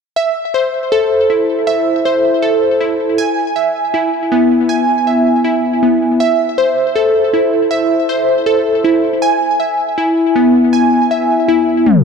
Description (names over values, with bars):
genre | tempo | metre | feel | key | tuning
hip hop | 159 BPM | 4/4 | half-time | A harmonic minor | A4 = 440 Hz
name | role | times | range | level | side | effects
glassy digital keys | arpeggios | 0.2-12.0 s | B3 to G#5 | -11 LUFS | equal | chorus, ping-pong delay
room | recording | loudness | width
moderate lush hall reverb, RT60 2.0 s, digital ambience | tape stop | -11 LUFS | side -6 dB against mid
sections
0.2-12.0 A section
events
tape stop 11.9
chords
0.2 Am; 3.2 E; 6.2 Am; 9.2 E